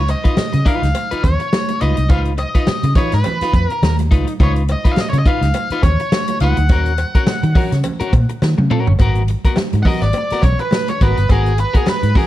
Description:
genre	funk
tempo	104 BPM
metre	4/4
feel	swing 56% on 16ths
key	G# dorian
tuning	A4 = 441 Hz
part	octave-fuzz lead guitar	melody	0.0-12.3 s	G#4 to F#5	-22 LUFS	equal	distortion
part	vintage muted fingered electric bass	bass	0.0-12.1 s	G1 to D#3	-16 LUFS	equal	none
part	electric guitar at the edge of break-up	accompaniment	0.1-12.3 s	B3 to B4	-24 LUFS	left 3 dB	harmonic tremolo
part	swinging big-band drum kit	drums	0.1-12.3 s	hi-hat, kick drum, snare drum, toms	-17 LUFS	equal	none
part	cowbell	percussion	0.1-12.0 s	none	-33 LUFS	left 3 dB	none
part	congas	percussion	0.4-12.3 s	none	-27 LUFS	right 4 dB	none
room	little or no reverb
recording	dark, warm production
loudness	-13 LUFS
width	side -14 dB against mid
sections	0.0-9.0 A section; 9.0-12.3 B section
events	drum fill 8.4-9.0; lead electric guitar solo 9.0-12.3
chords	0.0 C#9; 6.7 D#m7; 9.0 G#m9

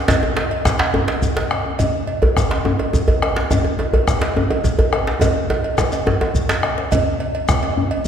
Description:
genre	west african traditional, West African drum ensemble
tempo	141 BPM (dotted quarters)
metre	12/8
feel	straight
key	none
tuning	none
part	bombo	percussion	0.1-8.1 s	none	-22 LUFS	equal	none
part	cowbell	percussion	0.1-8.0 s	none	-25 LUFS	right 2 dB	none
part	djembe	percussion	0.1-7.9 s	none	-23 LUFS	left 2 dB	none
part	djembe	percussion	0.1-6.6 s	none	-20 LUFS	right 1 dB	none
part	shekere	percussion	0.1-8.1 s	none	-28 LUFS	left 2 dB	none
room	wet concert hall reverb, RT60 1.9 s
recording	recorded in a church or concert hall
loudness	-16 LUFS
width	side -8 dB against mid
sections	0.0-6.9 A section; 6.9-8.1 B section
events	drum fill 5.2-6.9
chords	none

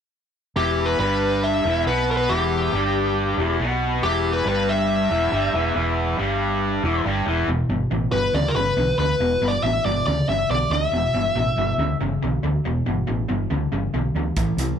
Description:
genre	blues rock power trio and southern rock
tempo	139 BPM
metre	4/4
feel	straight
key	E minor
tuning	A4 = 440 Hz
part	dark smooth lead guitar	melody	0.6-12.0 s	G4 to E5	-23 LUFS	left 2 dB	overdrive
part	cranked stack guitar	riff	0.6-14.8 s	E2 to B3	-23 LUFS	equal	overdrive
part	hollow-body short-scale fingered electric bass	bass	0.6-14.7 s	E1 to D2	-26 LUFS	right 1 dB	none
part	vintage drum kit	drums	14.4-14.7 s	hi-hat, kick drum	-25 LUFS	right 1 dB	none
room	light reverb, studio ambience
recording	none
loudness	-19 LUFS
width	side -8 dB against mid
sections	0.6-7.5 A section; 7.5-14.8 B section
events	none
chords	0.6 Em; 7.5 Em7

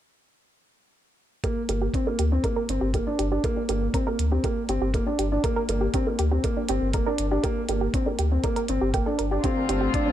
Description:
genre	piano and strings electronica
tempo	120 BPM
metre	4/4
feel	straight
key	G minor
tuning	A4 = 440 Hz
part	soft round pluck	arpeggios	1.4-10.1 s	D4 to G5	-31 LUFS	right 2 dB	chorus, sidechain pumping, digital delay
part	dark upright piano	riff	1.4-10.1 s	Bb3 to D4	-26 LUFS	equal	digital delay
part	electronic hi-hat	drums	1.4-10.0 s	none	-36 LUFS	right 4 dB	none
part	electronic kick drum	drums	1.4-10.0 s	none	-28 LUFS	equal	none
part	warm sub bass	bass	1.7-9.9 s	G1 to D2	-26 LUFS	equal	sidechain pumping
part	dark chamber string section	sustained chords	9.4-10.1 s	D3 to F4	-29 LUFS	left 5 dB	sidechain pumping
room	digital ambience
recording	none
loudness	-22 LUFS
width	side -11 dB against mid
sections	1.4-10.1 A section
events	filter sweep on synth arpeggio sound 1.4-10.1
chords	1.4 Gm; 5.4 C5/G; 9.4 Dm7

